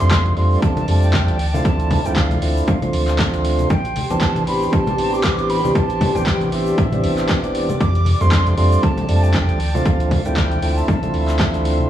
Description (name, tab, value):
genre	deep house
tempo	117 BPM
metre	4/4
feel	swing 57% on 16ths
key	unclear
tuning	A4 = 441 Hz
part	concert flute	melody	0.0-11.7 s	E5 to D6	-26 LUFS	right 2 dB	analog delay
part	tonewheel organ	stabs	0.0-11.9 s	E3 to G4	-22 LUFS	right 1 dB	overdrive, slow rotary speaker, sidechain pumping, tape echo
part	warm sub bass	bass	0.0-11.9 s	E1 to A2	-20 LUFS	equal	sidechain pumping
part	punchy analog drum machine	drums	0.0-11.9 s	handclaps, hi-hat	-27 LUFS	equal	overdrive
part	congas	percussion	0.0-11.9 s	none	-27 LUFS	left 2 dB	none
part	tube shaker	percussion	0.0-11.9 s	none	-46 LUFS	right 3 dB	none
part	airy breathy pad	texture	0.0-11.9 s	G4 to C6	-27 LUFS	left 1 dB	chorus, sidechain pumping
part	electronic kick drum	drums	0.1-11.5 s	none	-21 LUFS	equal	overdrive
room	light reverb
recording	cassette tape, small room ambience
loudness	-15 LUFS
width	side -11 dB against mid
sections	0.0-11.9 A section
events	none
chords	0.0 F6; 1.4 Dm9; 3.7 Am11; 7.8 F6; 9.6 Dm9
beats	0.11 0.63 1.14 | 1.65 2.16 2.68 3.19 | 3.70 4.22 4.73 5.24 | 5.75 6.27 6.78 7.29 | 7.80 8.32 8.83 9.34 | 9.86 10.37 10.88 11.39